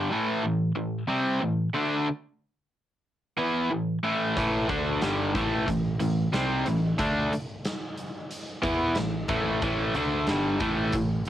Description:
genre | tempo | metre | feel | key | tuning
hard rock | 92 BPM | 4/4 | straight | unclear | A4 = 440 Hz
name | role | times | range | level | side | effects
cranked stack guitar | riff | 0.0-11.2 s | G2 to E4 | -25 LUFS | equal | overdrive
modern bright picked electric bass | bass | 4.4-11.3 s | G1 to E2 | -32 LUFS | equal | none
huge arena drum kit | drums | 4.4-11.3 s | hi-hat, kick drum, snare drum | -33 LUFS | equal | cassette tape
room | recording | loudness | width
light reverb | home recording on cassette | -24 LUFS | side -12 dB against mid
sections
0.0-11.3 A section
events
none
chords
0.0 A5

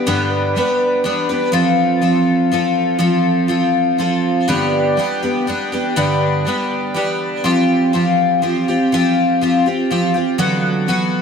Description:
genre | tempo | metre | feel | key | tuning
rock | 122 BPM | 3/4 | straight | G mixolydian | A4 = 440 Hz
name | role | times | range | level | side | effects
picked twelve-string acoustic guitar | solo | 0.0-11.2 s | G2 to B4 | -14 LUFS | equal | wide subtle chorus, diffuse ambient delay
room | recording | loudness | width
wet plate reverb, RT60 2.7 s | dreamy mix soaked in reverb | -14 LUFS | side -6 dB against mid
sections
0.0-10.4 A section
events
none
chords
0.0 G; 1.5 F; 4.5 G; 7.4 Fsus2; 10.4 D6

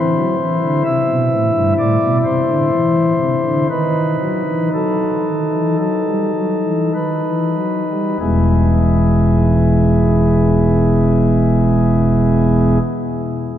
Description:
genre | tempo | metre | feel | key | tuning
classical, chorale-style piece for pipe organ | 47-66 BPM | 4/4 | rubato | unclear | A4 = 441 Hz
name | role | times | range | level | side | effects
pipe organ, flutes | solo | 0.0-12.8 s | E1 to E5 | -13 LUFS | equal | none
room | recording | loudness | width
wet cathedral reverb, RT60 7.1 s | dark, warm production | -13 LUFS | side -10 dB against mid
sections
0.0-8.2 A section; 8.2-13.2 B section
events
slowing down 0.0-8.2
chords
0.0 Am; 3.7 B7/D#; 8.2 E

